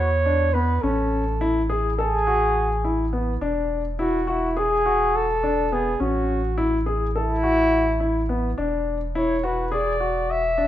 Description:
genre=contemporary instrumental, chamber music in an uneven meter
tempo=209 BPM (eighths)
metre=9/8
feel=straight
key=unclear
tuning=A4 = 438 Hz
part: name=mellow flugelhorn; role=melody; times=0.0-10.7 s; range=E4 to E5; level=-23 LUFS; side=equal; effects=none
part: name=warm grand piano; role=arpeggios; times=0.0-10.7 s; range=B3 to A4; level=-24 LUFS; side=left 2 dB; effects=none
part: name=warm sub bass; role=bass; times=0.0-10.7 s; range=E1 to E2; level=-26 LUFS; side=equal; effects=none
room=light reverb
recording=dark, warm production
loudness=-20 LUFS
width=side -12 dB against mid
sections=0.0-10.7 A section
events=none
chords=0.0 E7(no3); 0.8 Amaj7; 3.4 E9; 6.0 A; 8.6 E7sus2

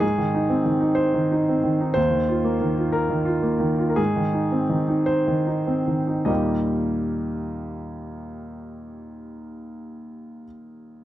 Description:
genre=neoclassical minimalist piano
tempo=49-62 BPM (dotted quarters)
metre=6/8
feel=rubato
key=Eb major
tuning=A4 = 438 Hz
part: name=clear concert grand piano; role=solo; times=0.0-11.0 s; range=Eb2 to Eb5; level=-21 LUFS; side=equal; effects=none
room=light reverb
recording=dry, close 1970s-style studio recording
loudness=-20 LUFS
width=side -13 dB against mid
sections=0.0-6.3 A section; 6.3-11.0 B section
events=slowing down 1.0-6.3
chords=0.0 Ab; 2.0 Ebsus2; 4.0 Ab; 6.3 Eb

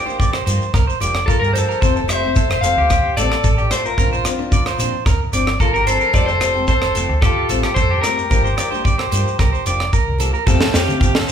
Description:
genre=highlife guitar band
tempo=111 BPM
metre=4/4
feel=straight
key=F major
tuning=A4 = 440 Hz
part: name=electric guitar at the edge of break-up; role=melody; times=0.0-9.9 s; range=A4 to F5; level=-20 LUFS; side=left 2 dB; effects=none
part: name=clear trumpet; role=second line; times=0.0-9.9 s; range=F4 to C5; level=-27 LUFS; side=left 5 dB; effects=none
part: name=picked steel-string acoustic guitar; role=accompaniment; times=0.0-11.2 s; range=F3 to G4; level=-26 LUFS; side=left 6 dB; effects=none
part: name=electric guitar at the edge of break-up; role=arpeggios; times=0.0-11.3 s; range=G4 to D5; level=-22 LUFS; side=right 4 dB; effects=none
part: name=shekere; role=percussion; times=0.1-11.3 s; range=none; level=-24 LUFS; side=left 1 dB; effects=none
part: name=tight funk drum kit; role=drums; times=0.2-11.3 s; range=hi-hat, kick drum, rim click, snare drum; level=-20 LUFS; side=right 1 dB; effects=none
part: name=hollow-body short-scale fingered electric bass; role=bass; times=0.5-11.3 s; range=F1 to D3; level=-21 LUFS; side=equal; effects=none
part: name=overdriven combo organ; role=sustained chords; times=10.5-11.3 s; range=F5 to A5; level=-29 LUFS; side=equal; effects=none
room=moderate large studio reverb, RT60 1.1 s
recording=band playing live in one room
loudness=-14 LUFS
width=side -8 dB against mid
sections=0.0-10.5 A section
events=none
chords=0.0 Gm7; 1.8 Fadd9; 4.0 Bbadd9; 6.1 Fadd9; 8.3 Gm7; 10.5 Fadd9

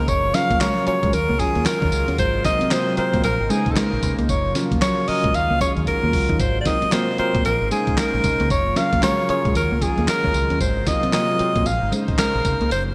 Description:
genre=R&B, new jack swing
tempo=114 BPM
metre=4/4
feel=swing 61% on 16ths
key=Bb minor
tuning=A4 = 441 Hz
part: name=clear alto saxophone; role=melody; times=0.0-12.8 s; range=Ab4 to F5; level=-24 LUFS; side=equal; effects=none
part: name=tine electric piano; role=accompaniment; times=0.0-12.7 s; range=Gb3 to Db5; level=-29 LUFS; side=equal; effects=medium tremolo
part: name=chorused pulse-width pad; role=sustained chords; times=0.0-12.9 s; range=C3 to C5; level=-31 LUFS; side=equal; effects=none
part: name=mellow electric guitar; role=riff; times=0.0-12.9 s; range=Gb3 to Eb4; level=-30 LUFS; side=equal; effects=subtle chorus
part: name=deep dub fingered electric bass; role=bass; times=0.0-12.9 s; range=Gb1 to Eb2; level=-27 LUFS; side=equal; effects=tube saturation
part: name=dusty soul sampler-style drum kit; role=drums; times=0.1-12.9 s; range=handclaps, hi-hat, kick drum, snare drum, tambourine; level=-27 LUFS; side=equal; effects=gated reverb
room=moderate lush hall reverb, RT60 2.0 s, digital ambience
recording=bright 1980s-style digital production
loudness=-20 LUFS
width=mono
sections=0.0-12.9 A section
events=drum fill 5.9-6.4; kick muted 12.7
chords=0.1 Gbmaj7; 1.1 Ebm11; 2.2 Ab13; 3.2 Bbm11; 4.3 Gbmaj7; 5.3 Ebm11; 6.4 Ab13; 7.4 Bbm11; 8.5 Gbmaj7; 9.6 Ebm11; 10.6 Ab13; 11.7 Bbm11

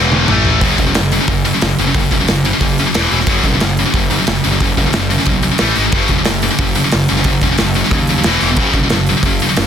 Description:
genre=heavy metal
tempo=181 BPM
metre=4/4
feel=straight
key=F# minor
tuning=A4 = 441 Hz
part: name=scooped high-gain guitar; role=riff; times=0.0-9.7 s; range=E2 to A3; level=-14 LUFS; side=left 1 dB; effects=distortion
part: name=fuzz picked electric bass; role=bass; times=0.0-9.7 s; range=E1 to D#2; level=-18 LUFS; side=equal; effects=overdrive
part: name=big rock drum kit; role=drums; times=0.1-9.6 s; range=hi-hat, kick drum, snare drum, toms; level=-17 LUFS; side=equal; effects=none
room=light reverb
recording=dense, heavily limited modern master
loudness=-11 LUFS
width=side -8 dB against mid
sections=0.6-9.7 A section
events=drum fill 0.0-0.6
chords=0.3 A5; 0.6 F#5; 3.0 E5; 3.3 F#5; 5.6 A5; 5.8 G#5; 5.9 F#5; 8.2 E5; 8.6 F#5

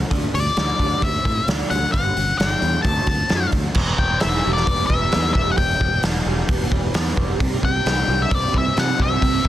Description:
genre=quiet-loud alternative rock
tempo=132 BPM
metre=4/4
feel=straight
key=unclear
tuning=A4 = 437 Hz
part: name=electric guitar through a small old amp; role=arpeggios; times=0.0-9.5 s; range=E2 to D4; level=-27 LUFS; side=right 2 dB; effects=phaser
part: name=fingered electric bass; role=bass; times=0.0-9.5 s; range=E1 to C3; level=-24 LUFS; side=equal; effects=none
part: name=raw garage drum kit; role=drums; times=0.1-9.5 s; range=crash cymbal, hi-hat, kick drum, snare drum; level=-21 LUFS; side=equal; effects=none
part: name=octave-fuzz lead guitar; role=melody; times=0.3-9.5 s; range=D5 to A5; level=-22 LUFS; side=left 3 dB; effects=distortion
room=little or no reverb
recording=dense, heavily limited modern master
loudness=-17 LUFS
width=side -13 dB against mid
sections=0.0-3.8 A section; 3.8-9.5 B section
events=none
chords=0.1 Dsus4; 1.9 G5; 2.9 D; 3.8 Em; 7.4 C

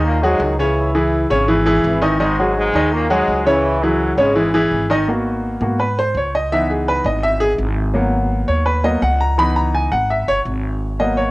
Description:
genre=latin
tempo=167 BPM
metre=4/4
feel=straight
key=G# minor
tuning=A4 = 440 Hz
part: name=bright trombone section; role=melody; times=0.0-4.5 s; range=F#2 to E4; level=-21 LUFS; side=equal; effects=cassette tape
part: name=bright upright piano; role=accompaniment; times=0.0-11.3 s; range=C#3 to B5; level=-16 LUFS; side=equal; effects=cassette tape
part: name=upright bass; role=bass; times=0.0-11.3 s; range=F#1 to G#2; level=-21 LUFS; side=equal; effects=none
room=light reverb, small room ambience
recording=home recording on cassette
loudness=-15 LUFS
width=side -20 dB against mid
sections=0.0-5.1 A section; 5.1-11.3 B section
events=upright piano solo 5.1-11.3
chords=0.0 G#5; 0.8 C#m; 2.2 G#5; 3.6 C#m; 5.1 G#m7; 6.5 C#m7; 7.9 G#m7; 9.4 C#m7

